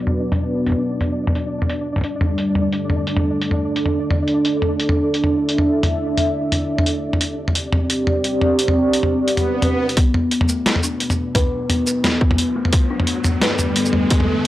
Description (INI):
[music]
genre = half-time drum and bass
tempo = 174 BPM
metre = 4/4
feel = swing 55% on 16ths, half-time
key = B phrygian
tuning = A4 = 440 Hz
[part]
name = dark analog pad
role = sustained chords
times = 0.0-14.5 s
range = G3 to E5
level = -21 LUFS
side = right 1 dB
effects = chorus, sidechain pumping
[part]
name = pulsing gated texture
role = texture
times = 0.0-10.0 s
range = D4 to D5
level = -28 LUFS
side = left 2 dB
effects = chorus, built-in reverb
[part]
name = boom bap sampler-style drum kit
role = drums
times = 0.1-14.3 s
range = hi-hat, shaker, snare drum, toms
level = -20 LUFS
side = equal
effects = none
[part]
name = swell and riser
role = sound effects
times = 9.4-14.5 s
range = none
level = -27 LUFS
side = right 1 dB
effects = none
[part]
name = kalimba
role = arpeggios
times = 10.0-14.2 s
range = A3 to B4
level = -21 LUFS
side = left 2 dB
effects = vintage 12-bit sampler grit, low-pass filter, analog delay
[part]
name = electronic kick drum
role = drums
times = 10.0-14.2 s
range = none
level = -16 LUFS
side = equal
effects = none
[sound]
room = moderate digital room reverb, RT60 1.2 s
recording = dry, gritty hardware recording, low-pass filter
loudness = -16 LUFS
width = side -14 dB against mid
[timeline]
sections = 0.0-10.0 A section; 10.0-14.5 B section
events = filter sweep on analog synth pad 0.0-10.0, 10.0-14.5; filter sweep 0.0-10.0; swell 9.4-10.0; build-up 10.0-14.5; riser 10.0-14.5; filter sweep on kalimba 10.0-14.5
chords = 0.0 Bm; 1.7 G5; 4.5 Dsus2; 7.2 C5; 10.0 B7(no3); 12.7 G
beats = | 0.32 0.66 1.01 1.35 | 1.70 2.04 2.38 2.73 | 3.08 3.42 3.76 4.11 | 4.45 4.80 5.14 5.49 | 5.83 6.18 6.52 6.87 | 7.21 7.56 7.90 8.25 | 8.59 8.94 9.28 9.63 | 9.97 10.32 10.66 11.01 | 11.35 11.70 12.04 12.38 | 12.73 13.07 13.42 13.76 | 14.11 14.45